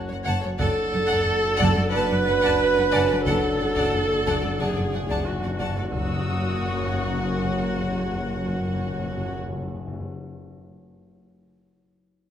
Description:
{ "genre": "cinematic, suspense film score", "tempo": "90 BPM", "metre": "4/4", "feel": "straight", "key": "unclear", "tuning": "A4 = 440 Hz", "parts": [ { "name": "warm chamber viola section", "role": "accompaniment", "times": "0.0-9.4 s", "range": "F#4 to B4", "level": "-24 LUFS", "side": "right 2 dB", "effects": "none" }, { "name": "glass harmonica", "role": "sustained chords", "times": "0.0-9.4 s", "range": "F#4 to F#5", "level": "-36 LUFS", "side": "right 1 dB", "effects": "none" }, { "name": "mellow French horn section", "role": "sustained chords", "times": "0.0-9.4 s", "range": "F#3 to D4", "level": "-32 LUFS", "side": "left 4 dB", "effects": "none" }, { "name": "analog drone", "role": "drone", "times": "0.0-9.4 s", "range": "F#1", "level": "-36 LUFS", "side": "left 1 dB", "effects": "chorus" }, { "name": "clear baby grand piano", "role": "texture", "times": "0.0-6.0 s", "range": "G#5", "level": "-37 LUFS", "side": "equal", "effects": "none" }, { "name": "warm chamber violin section", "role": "melody", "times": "0.1-9.4 s", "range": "C#5 to A5", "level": "-35 LUFS", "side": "left 5 dB", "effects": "none" }, { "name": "warm chamber violin section", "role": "second line", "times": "0.1-9.4 s", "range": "A4 to F#5", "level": "-32 LUFS", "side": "left 1 dB", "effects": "none" }, { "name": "dark chamber cello section", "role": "bass", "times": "0.1-9.4 s", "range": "F#2", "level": "-31 LUFS", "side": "right 2 dB", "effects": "none" }, { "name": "dark studio double bass section", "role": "bass", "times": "0.3-9.4 s", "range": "F#1", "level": "-31 LUFS", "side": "right 2 dB", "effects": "none" }, { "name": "taiko ensemble", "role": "drums", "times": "0.6-7.2 s", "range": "none", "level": "-34 LUFS", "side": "equal", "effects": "none" }, { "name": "timpani", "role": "percussion", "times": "0.6-10.1 s", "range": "F#2", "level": "-32 LUFS", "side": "left 2 dB", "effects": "none" }, { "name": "warm chamber violin section", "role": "texture", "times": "5.9-8.2 s", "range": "C#6 to E6", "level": "-36 LUFS", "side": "left 6 dB", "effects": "none" } ], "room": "moderate concert hall reverb, RT60 2.3 s", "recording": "none", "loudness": "-21 LUFS", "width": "side -9 dB against mid", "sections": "0.0-5.9 A section; 5.9-8.6 B section", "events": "timpani fill 0.6-5.9", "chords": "0.0 F#m; 0.6 D/F#; 5.9 F#", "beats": "| 0.60 1.27 1.94 2.60 | 3.27 3.94 4.60 5.27 | 5.93 6.60 7.27 7.93" }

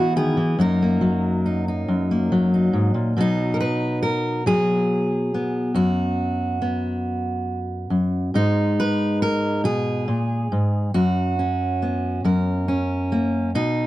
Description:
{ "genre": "folk, solo fingerstyle acoustic guitar", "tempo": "46 BPM (dotted quarters)", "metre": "6/8", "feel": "straight", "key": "unclear", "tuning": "A4 = 436 Hz", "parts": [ { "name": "fingerpicked steel-string acoustic guitar", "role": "solo", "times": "0.0-13.9 s", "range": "F#2 to B4", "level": "-19 LUFS", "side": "equal", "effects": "none" } ], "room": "light reverb", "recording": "dry, close 1970s-style studio recording", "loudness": "-19 LUFS", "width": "side -16 dB against mid", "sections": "0.0-3.2 A section; 3.2-13.9 B section", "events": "none", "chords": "0.0 E; 0.6 F#6; 3.2 B; 5.8 F#sus4; 8.3 G#m; 10.9 F#sus4; 12.2 F#", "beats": "| 0.58 1.88 | 3.17 4.46 | 5.76 7.05 | 8.35 9.64 | 10.94 12.24 | 13.53" }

